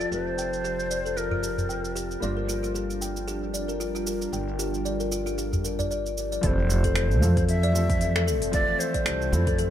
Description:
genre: organic downtempo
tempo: 114 BPM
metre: 4/4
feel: swing 56% on 16ths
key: unclear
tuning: A4 = 441 Hz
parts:
  - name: breathy bright low ney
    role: melody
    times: 0.0-2.0, 6.4-9.7 s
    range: Bb4 to E5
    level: -30 LUFS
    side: equal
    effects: dub echo
  - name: felt-muted upright piano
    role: accompaniment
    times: 0.0-9.7 s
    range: F3 to E5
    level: -36 LUFS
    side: equal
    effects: sidechain pumping, analog delay
  - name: warbly tape-like pad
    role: sustained chords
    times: 0.0-9.7 s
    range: F3 to A5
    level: -35 LUFS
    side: right 1 dB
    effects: chorus, built-in reverb, phaser, sidechain pumping
  - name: kalimba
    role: arpeggios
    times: 0.0-9.7 s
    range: F4 to G5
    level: -31 LUFS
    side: left 4 dB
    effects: low-pass filter, dub echo
  - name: upright bass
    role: bass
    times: 0.0-9.7 s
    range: F1 to F2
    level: -28 LUFS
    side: right 1 dB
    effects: sidechain pumping
  - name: organic electronic drum kit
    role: drums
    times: 0.0-9.7 s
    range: finger snaps, hi-hat, shaker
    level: -34 LUFS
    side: right 1 dB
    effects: low-pass filter on hats, low-pass filter on perc, low-pass filter on snare, low-pass filter on room
  - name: quartz singing bowl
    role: texture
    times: 0.0-9.7 s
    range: E3 to F4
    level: -39 LUFS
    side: equal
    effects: none
  - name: udu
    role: percussion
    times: 1.3-1.7, 5.5-5.9 s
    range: none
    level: -30 LUFS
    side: equal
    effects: none
  - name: electronic kick drum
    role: drums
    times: 6.4-9.6 s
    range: none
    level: -27 LUFS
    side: right 1 dB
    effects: none
room: light reverb, studio reverb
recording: echo-heavy mix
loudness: -24 LUFS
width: side -10 dB against mid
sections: 0.0-6.4 A section; 6.4-9.7 B section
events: none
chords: 0.0 Fmaj7; 2.2 Gm7; 6.4 Fmaj7

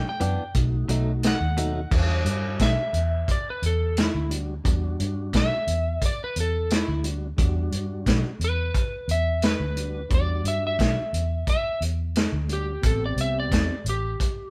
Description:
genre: straight-eighth soul blues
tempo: 88 BPM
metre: 4/4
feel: swing 54% on 16ths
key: E minor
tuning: A4 = 440 Hz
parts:
  - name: electric slide guitar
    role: melody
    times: 0.0-14.5 s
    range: E4 to G5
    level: -31 LUFS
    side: equal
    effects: none
  - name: tonewheel organ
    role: accompaniment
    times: 0.0-13.8 s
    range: F#3 to G4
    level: -36 LUFS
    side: equal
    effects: slow rotary speaker
  - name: vintage muted fingered electric bass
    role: bass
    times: 0.0-14.1 s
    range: A1 to G2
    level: -28 LUFS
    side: equal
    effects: none
  - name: direct-recorded clean electric guitar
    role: stabs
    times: 0.2-1.8 s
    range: B2 to G4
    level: -32 LUFS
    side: equal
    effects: none
  - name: warm soul drum kit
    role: drums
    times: 0.2-14.4 s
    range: crash cymbal, hi-hat, kick drum, snare drum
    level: -27 LUFS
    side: equal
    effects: none
room: light reverb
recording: band playing live in one room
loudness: -25 LUFS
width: mono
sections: 0.0-1.9 A section; 1.9-14.5 B section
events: electric slide guitar solo 1.9-14.5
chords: 0.0 Em7; 0.6 B7; 1.9 Em7; 12.8 Am7

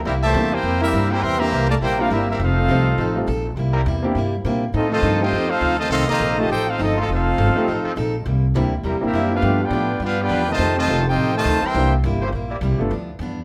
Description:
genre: jazz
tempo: 205 BPM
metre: 4/4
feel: swing 60% on 8ths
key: unclear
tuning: A4 = 440 Hz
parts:
  - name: warm grand piano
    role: accompaniment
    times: 0.0-12.9 s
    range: G3 to A4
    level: -27 LUFS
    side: equal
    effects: none
  - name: upright bass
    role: bass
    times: 0.0-13.4 s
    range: F1 to Bb2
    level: -24 LUFS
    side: equal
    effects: none
  - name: bright trumpet section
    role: melody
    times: 0.1-11.9 s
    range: C4 to C6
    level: -24 LUFS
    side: equal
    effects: none
  - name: bright trombone section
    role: second line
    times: 0.1-11.9 s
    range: Bb2 to G4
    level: -26 LUFS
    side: equal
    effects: none
  - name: picked plugged-in old ladder-braced acoustic guitar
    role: accompaniment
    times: 0.1-13.4 s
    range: G2 to A4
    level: -30 LUFS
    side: equal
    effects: none
  - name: brilliant trombone section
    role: sustained chords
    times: 1.1-12.6 s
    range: F3 to D5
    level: -32 LUFS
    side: equal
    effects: none
room: light reverb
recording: none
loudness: -20 LUFS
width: mono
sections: 0.1-13.4 A section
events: none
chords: 0.1 C7; 2.4 F7; 3.6 C7; 4.7 F7; 8.2 C7; 9.4 G7; 10.6 F7; 11.8 C7; 12.9 G7

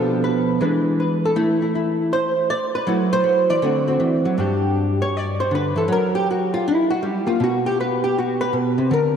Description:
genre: solo jazz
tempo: 159 BPM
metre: 4/4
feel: swing 66% on 8ths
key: G major from 4.4 s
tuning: A4 = 440 Hz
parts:
  - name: hollow-body jazz guitar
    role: solo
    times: 0.0-9.2 s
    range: G2 to D5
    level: -18 LUFS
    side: equal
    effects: analog chorus, tape echo
room: wet lush hall reverb, RT60 2.8 s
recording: dreamy mix soaked in reverb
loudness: -18 LUFS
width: side -7 dB against mid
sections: 0.0-4.4 A section; 4.4-9.2 B section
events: hollow-body jazz guitar solo 4.4-9.2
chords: 0.0 Bm7b5; 0.6 E7; 1.4 Am; 2.9 F#m7b5; 3.6 D9; 4.4 G5; 5.9 F#; 7.4 Gmaj7/B

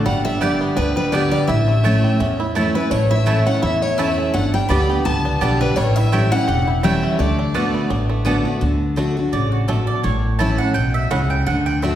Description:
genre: bluegrass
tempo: 168 BPM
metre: 4/4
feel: swing 55% on 8ths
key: unclear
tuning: A4 = 436 Hz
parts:
  - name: bluegrass banjo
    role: melody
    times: 0.0-11.9 s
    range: G3 to G4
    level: -26 LUFS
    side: right 3 dB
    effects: none
  - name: picked steel-string acoustic guitar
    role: accompaniment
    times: 0.0-12.0 s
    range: E2 to G4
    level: -20 LUFS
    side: equal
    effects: none
  - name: picked steel-string acoustic guitar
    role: melody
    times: 0.1-8.2 s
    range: B4 to B5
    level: -23 LUFS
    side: left 2 dB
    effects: none
  - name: clear fiddle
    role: second line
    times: 0.1-8.2 s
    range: B4 to B5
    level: -30 LUFS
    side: left 2 dB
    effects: none
  - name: upright bass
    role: bass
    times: 0.1-12.0 s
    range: E1 to E2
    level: -21 LUFS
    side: equal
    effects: none
  - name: mandolin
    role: stabs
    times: 0.4-12.0 s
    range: A3 to A5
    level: -26 LUFS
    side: right 4 dB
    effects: none
room: wet scoring stage reverb, RT60 1.7 s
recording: heard from further back in the room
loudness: -16 LUFS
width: side -11 dB against mid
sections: 0.0-8.6 A section; 8.6-12.0 B section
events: mandolin solo 8.6-12.0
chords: 0.1 G; 1.5 A; 4.3 Gadd9; 5.8 A7; 7.2 D6; 8.6 D; 10.0 A

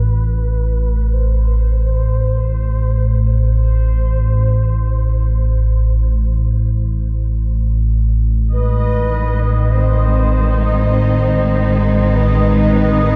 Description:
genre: dark ambient drone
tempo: 49 BPM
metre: 4/4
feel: straight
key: unclear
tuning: A4 = 436 Hz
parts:
  - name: mellow horn-like synth lead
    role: melody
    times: 0.0-13.2 s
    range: B4 to C5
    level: -28 LUFS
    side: equal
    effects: phaser, lush chorus, cassette tape, tape echo
  - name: deep rumbling drone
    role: drone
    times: 0.0-13.2 s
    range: A1 to A2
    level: -17 LUFS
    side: equal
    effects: built-in reverb, phaser, subtle chorus
  - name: dark studio cello section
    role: sustained chords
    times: 8.5-13.2 s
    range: D#3 to D#4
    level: -20 LUFS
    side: equal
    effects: none
  - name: bubbling stepped-filter texture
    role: texture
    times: 8.5-13.2 s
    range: D#5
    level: -27 LUFS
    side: equal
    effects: chorus, built-in reverb
room: light reverb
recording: cassette tape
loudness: -16 LUFS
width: mono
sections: 0.0-13.2 A section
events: fade-in on soft synth lead 0.0-13.2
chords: 0.0 N.C.; 8.5 G#

